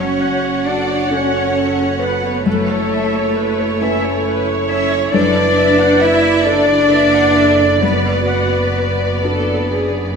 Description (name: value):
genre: cinematic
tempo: 42-46 BPM (dotted quarters)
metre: 6/8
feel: rubato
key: F# minor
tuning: A4 = 440 Hz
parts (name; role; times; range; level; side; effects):
- rich symphonic violin section; melody; 0.0-10.2 s; C#5 to F#5; -23 LUFS; left 3 dB; none
- clear clarinet; second line; 0.0-10.2 s; A4 to E5; -20 LUFS; left 2 dB; none
- rich symphonic violin section; second line; 0.0-10.2 s; A4 to E5; -24 LUFS; left 2 dB; none
- felt-muted upright piano; accompaniment; 0.0-10.2 s; F#2 to B4; -23 LUFS; left 4 dB; none
- rich symphonic viola section; accompaniment; 0.0-10.2 s; E4 to F#5; -22 LUFS; right 2 dB; none
- dark French horn section; sustained chords; 0.0-9.9 s; F#4 to B4; -22 LUFS; equal; none
- clear symphonic cello section; bass; 0.0-10.2 s; A3 to E4; -19 LUFS; right 3 dB; none
- rich symphonic double bass section; bass; 0.0-10.2 s; F#1; -23 LUFS; right 2 dB; none
room: wet scoring stage reverb, RT60 1.6 s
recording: minimal, uncompressed stereo recording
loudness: -13 LUFS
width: side -6 dB against mid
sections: 0.0-10.2 A section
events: none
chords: 0.0 F#m; 2.5 Aadd9/F#; 5.1 Dadd9/F#; 7.8 Bm/F#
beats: 1.11 | 2.46 3.81 | 5.13 6.46 | 7.82 9.23